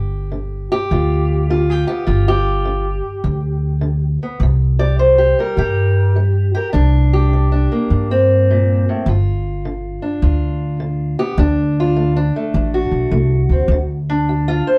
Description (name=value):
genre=acoustic country blues, solo or duo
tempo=103 BPM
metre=4/4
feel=swing 66% on 8ths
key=unclear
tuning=A4 = 440 Hz
part: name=fingerpicked steel-string acoustic guitar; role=melody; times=0.0-14.8 s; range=G2 to D5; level=-21 LUFS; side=equal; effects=none
part: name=upright bass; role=bass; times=0.0-14.6 s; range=G1 to G2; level=-18 LUFS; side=equal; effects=none
room=moderate studio reverb, RT60 0.6 s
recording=band playing live in one room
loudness=-17 LUFS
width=mono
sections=0.0-14.8 A section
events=none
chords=0.0 G7; 4.4 C7(no3); 9.1 G7(no3); 11.4 D